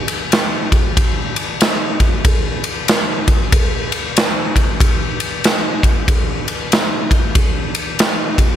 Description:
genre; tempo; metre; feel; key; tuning
metal; 94 BPM; 4/4; swing 61% on 8ths; none; none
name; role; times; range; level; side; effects
big rock drum kit; drums; 0.1-8.5 s; kick drum, ride cymbal, snare drum; -14 LUFS; equal; none
room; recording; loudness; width
little or no reverb; none; -14 LUFS; side -10 dB against mid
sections
0.0-8.6 A section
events
none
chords
none

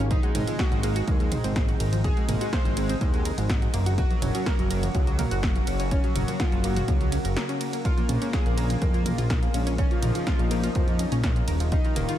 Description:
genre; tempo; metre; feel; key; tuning
melodic techno; 124 BPM; 4/4; straight; Bb minor; A4 = 442 Hz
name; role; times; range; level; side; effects
lush unison pad; sustained chords; 0.0-12.2 s; C3 to Gb4; -34 LUFS; equal; chorus, sidechain pumping
tight sequenced synth; arpeggios; 0.0-12.2 s; F3 to Db6; -34 LUFS; equal; chorus, sidechain pumping, tape echo
fat analog bass; bass; 0.0-12.1 s; Eb1 to F2; -27 LUFS; equal; sidechain pumping
soft supersaw; melody; 0.1-12.2 s; Eb3 to C5; -33 LUFS; equal; cassette tape, diffuse ambient delay
dark detuned synth bell; second line; 0.1-12.2 s; Eb4 to C6; -39 LUFS; left 2 dB; none
electronic kick drum; drums; 0.1-11.8 s; none; -25 LUFS; equal; none
punchy analog drum machine; drums; 0.1-12.2 s; hi-hat, ride cymbal, snare drum, toms; -32 LUFS; right 1 dB; none
room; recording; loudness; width
light reverb, digital ambience; none; -22 LUFS; side -12 dB against mid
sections
0.0-12.2 A section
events
break 7.4-7.8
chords
0.1 Ab; 4.0 Gb; 7.8 Bbm7

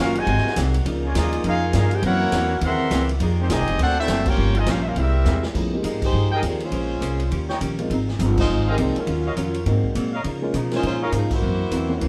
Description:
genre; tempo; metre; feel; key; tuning
jazz, big band swing; 204 BPM; 4/4; swing 61% on 8ths; F minor; A4 = 440 Hz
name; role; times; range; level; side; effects
clear trumpet section; melody; 0.0-5.5 s; Ab3 to C6; -27 LUFS; equal; none
bright trombone section; second line; 0.0-5.4 s; C3 to G4; -30 LUFS; equal; none
archtop guitar, miked and amplified; accompaniment; 0.0-12.1 s; Gb2 to C5; -30 LUFS; equal; none
bright saxophone section; sustained chords; 0.0-5.5 s; C3 to G4; -36 LUFS; equal; none
upright bass; bass; 0.0-12.1 s; F1 to Db3; -25 LUFS; equal; none
swinging big-band drum kit; drums; 0.2-12.1 s; crash cymbal, hi-hat, kick drum, ride cymbal, snare drum; -32 LUFS; equal; none
warm grand piano; accompaniment; 5.5-12.1 s; Ab3 to Ab4; -30 LUFS; equal; none
warm saxophone section; melody; 6.0-12.1 s; Eb3 to C5; -28 LUFS; equal; none
mellow trumpet section; stabs; 6.3-11.1 s; Gb4 to G5; -30 LUFS; equal; none
room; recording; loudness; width
moderate studio reverb, RT60 0.7 s; band playing live in one room; -22 LUFS; mono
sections
0.0-5.6 A section; 5.6-12.1 B section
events
band accent 4.2, 6.0, 8.3, 11.3; drum fill 5.3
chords
0.3 Ab9; 0.9 Db69; 2.0 Gb7#11; 3.2 Fm11; 3.8 D7b13; 4.4 Gm7b5; 5.0 C7b13; 5.6 Fm11; 6.7 Bbm9; 7.3 Eb7; 7.9 Ab6; 9.1 Ebm9; 9.7 Ab9; 10.3 Db69; 11.4 Gb7#11

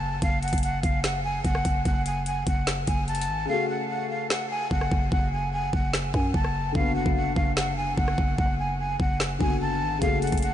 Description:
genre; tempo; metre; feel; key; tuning
hip hop, trap; 147 BPM; 4/4; half-time; F# harmonic minor; A4 = 440 Hz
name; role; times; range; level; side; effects
breathy jazz flute; melody; 0.0-10.5 s; E#5 to A5; -29 LUFS; equal; low-pass filter, tape echo
growling 808-style bass; bass; 0.0-10.5 s; F#1 to F#2; -28 LUFS; equal; none
trap drum kit; drums; 0.2-10.5 s; finger snaps, hi-hat, kick drum, rim click, snare drum; -27 LUFS; equal; none
dark concert grand piano; accompaniment; 3.5-10.5 s; C#3 to F#4; -31 LUFS; left 5 dB; analog chorus, low-pass filter
room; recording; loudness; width
moderate huge ambient reverb, RT60 7.8 s; dreamy mix soaked in reverb, nothing above 10.4 kHz; -23 LUFS; side -11 dB against mid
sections
0.0-10.5 A section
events
hi-hats muted 3.5-10.0; kick muted 3.5-4.3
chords
0.2 F#sus2; 3.5 F#m; 6.8 Bm/F#; 10.0 F#m

